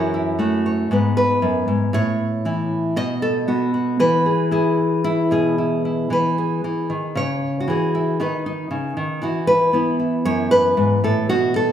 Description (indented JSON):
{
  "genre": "folk, solo fingerstyle acoustic guitar",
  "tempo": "116 BPM",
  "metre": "4/4",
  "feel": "rubato",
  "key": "F# dorian",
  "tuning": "A4 = 439 Hz",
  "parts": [
    { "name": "nylon-string guitar", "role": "solo", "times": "0.0-11.7 s", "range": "F#2 to D#5", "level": "-17 LUFS", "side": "equal", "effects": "none" }
  ],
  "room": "wet recital hall reverb, RT60 1.4 s",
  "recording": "recorded in a church or concert hall",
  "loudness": "-17 LUFS",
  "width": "side -9 dB against mid",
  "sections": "0.0-11.7 A section",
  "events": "none",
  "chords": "0.0 F#m7; 0.9 G#m; 1.9 A; 3.0 B; 4.0 E; 7.2 C#m; 8.2 Badd9; 9.2 Esus2; 10.3 F#m7"
}